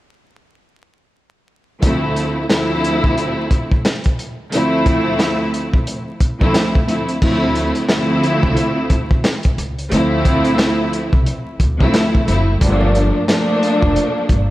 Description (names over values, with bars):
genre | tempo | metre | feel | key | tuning
hip hop, boom-bap hip-hop | 89 BPM | 4/4 | swing 59% on 16ths | D minor | A4 = 440 Hz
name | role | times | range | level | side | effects
warm studio string section | accompaniment | 1.8-14.5 s | D2 to E4 | -17 LUFS | equal | cassette tape, high-pass filter, low-pass filter
crunchy breakbeat drum kit | drums | 1.8-14.5 s | crash cymbal, hi-hat, kick drum, snare drum | -18 LUFS | equal | vintage 12-bit sampler grit
upright bass | bass | 7.2-14.5 s | F1 to D2 | -19 LUFS | equal | none
room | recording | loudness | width
light reverb, studio reverb | vinyl crackle | -14 LUFS | side -16 dB against mid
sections
1.8-7.2 A section; 7.2-14.5 B section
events
none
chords
1.8 Dm9; 12.6 Gm9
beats
| 1.82 2.50 3.17 3.85 | 4.52 5.20 5.87 6.54 | 7.22 7.89 8.57 9.24 | 9.91 10.59 11.26 11.94 | 12.61 13.29 13.96